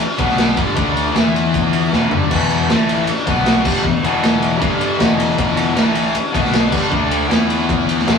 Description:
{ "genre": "hard rock", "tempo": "156 BPM", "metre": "4/4", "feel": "straight", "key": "unclear", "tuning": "A4 = 440 Hz", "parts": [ { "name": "distorted electric guitar", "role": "riff", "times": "0.0-8.2 s", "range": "E2 to E4", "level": "-19 LUFS", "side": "left 6 dB", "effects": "overdrive" }, { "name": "tight distorted guitar", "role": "riff", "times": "0.0-8.2 s", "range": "E2 to E4", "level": "-22 LUFS", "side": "right 3 dB", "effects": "distortion" }, { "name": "tight distorted guitar", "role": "riff", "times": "0.0-8.2 s", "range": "E2 to E4", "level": "-27 LUFS", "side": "equal", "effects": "none" }, { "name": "fingered electric bass", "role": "bass", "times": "0.0-8.2 s", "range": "E1 to E2", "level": "-26 LUFS", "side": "left 2 dB", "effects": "none" }, { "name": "raw garage drum kit", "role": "drums", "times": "0.2-8.2 s", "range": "crash cymbal, kick drum, ride cymbal, snare drum, toms", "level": "-17 LUFS", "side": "equal", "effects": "none" } ], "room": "moderate studio reverb, RT60 0.6 s", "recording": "rough rehearsal-room recording, small room ambience", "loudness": "-14 LUFS", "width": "side -6 dB against mid", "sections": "0.0-2.3 A section; 2.3-8.2 A section", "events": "drum fill 1.9-2.3", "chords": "0.0 N.C.; 0.2 B5; 0.6 G5; 0.8 D5; 1.2 E5; 2.7 A5; 3.1 N.C.; 3.3 B5; 3.7 E5; 4.6 G5; 5.0 E5; 5.8 A5; 6.2 N.C.; 6.3 B5; 6.7 G5; 6.9 D5; 7.3 E5" }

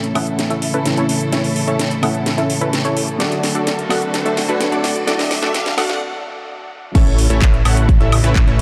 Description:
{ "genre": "EDM, festival progressive house", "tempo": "128 BPM", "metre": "4/4", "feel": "straight", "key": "unclear", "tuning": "A4 = 442 Hz", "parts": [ { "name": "dark baby grand piano", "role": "accompaniment", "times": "0.0-7.0 s", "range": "A2 to F#4", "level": "-25 LUFS", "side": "equal", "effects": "sidechain pumping, digital delay" }, { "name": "clear symphonic string section", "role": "sustained chords", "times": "0.0-8.6 s", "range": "C#3 to A4", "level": "-28 LUFS", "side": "equal", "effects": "sidechain pumping" }, { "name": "supersaw stab", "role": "riff", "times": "0.0-8.6 s", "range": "A3 to F#5", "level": "-23 LUFS", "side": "equal", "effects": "sidechain pumping, low-pass filter, digital delay" }, { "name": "house drum kit", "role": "drums", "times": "0.0-8.6 s", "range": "crash cymbal, handclaps, hi-hat, snare drum, woodblock", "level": "-25 LUFS", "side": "equal", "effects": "high-pass filter on hats, high-pass filter on snare, high-pass filter on perc, high-pass filter on cymbals, high-pass filter on room" }, { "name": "riser", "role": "sound effects", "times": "2.5-6.0 s", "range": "none", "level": "-33 LUFS", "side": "equal", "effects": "none" }, { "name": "fat analog bass", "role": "bass", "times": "7.0-8.6 s", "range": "A1", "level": "-18 LUFS", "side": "equal", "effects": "sidechain pumping" }, { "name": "electronic kick drum", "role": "drums", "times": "7.0-8.4 s", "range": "none", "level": "-15 LUFS", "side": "equal", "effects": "none" } ], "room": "light reverb", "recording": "dark, warm production, high-pass filter", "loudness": "-17 LUFS", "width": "mono", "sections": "0.0-7.0 A section; 7.0-8.6 B section", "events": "build-up 0.0-7.0; drum fill 0.0-6.0; filter sweep on supersaw synth 0.0-7.0; filter sweep 0.0-7.0; break 6.0-7.0; drop 7.0-8.6", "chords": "0.0 A; 3.2 D; 7.0 A" }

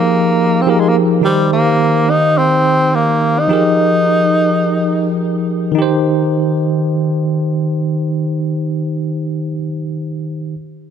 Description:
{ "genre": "afrobeats", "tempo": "free time", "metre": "none", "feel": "none", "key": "Eb major", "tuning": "A4 = 440 Hz", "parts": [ { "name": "breathy tenor saxophone", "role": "melody", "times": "0.0-5.2 s", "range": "G3 to Eb4", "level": "-15 LUFS", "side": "equal", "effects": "tape echo" }, { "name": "bell-like tine electric piano", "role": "accompaniment", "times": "0.0-10.6 s", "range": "Eb3 to C5", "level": "-15 LUFS", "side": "right 1 dB", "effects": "medium stereo tremolo" } ], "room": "moderate plate reverb, RT60 2.6 s", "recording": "dark, warm production", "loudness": "-13 LUFS", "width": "side -8 dB against mid", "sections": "0.0-1.2 A section; 1.2-5.8 B section; 5.8-8.0 C section", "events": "none", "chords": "0.0 Fm11; 1.2 Eb6; 3.5 Fm11; 5.8 Eb6" }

